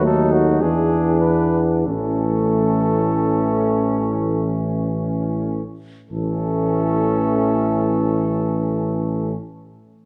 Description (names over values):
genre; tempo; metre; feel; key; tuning
classical, hymn-like piece for brass band; free time; none; none; A major; A4 = 440 Hz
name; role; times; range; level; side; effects
mellow flugelhorn; melody; 0.0-9.3 s; F#4 to B4; -29 LUFS; equal; none
mellow flugelhorn; second line; 0.0-9.4 s; C#4 to D#4; -28 LUFS; equal; none
mellow trombone section; accompaniment; 0.0-9.3 s; A3 to B3; -28 LUFS; equal; none
warm euphonium; accompaniment; 0.0-9.3 s; E3 to F#3; -26 LUFS; equal; none
mellow tuba; bass; 0.0-9.3 s; A1 to E2; -24 LUFS; equal; none
room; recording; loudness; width
moderate recital hall reverb, RT60 1.8 s; none; -20 LUFS; mono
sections
0.0-6.1 A section; 6.1-10.1 B section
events
slowing down 0.0-6.1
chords
0.0 B7/D# (rootless); 0.6 E7; 1.9 A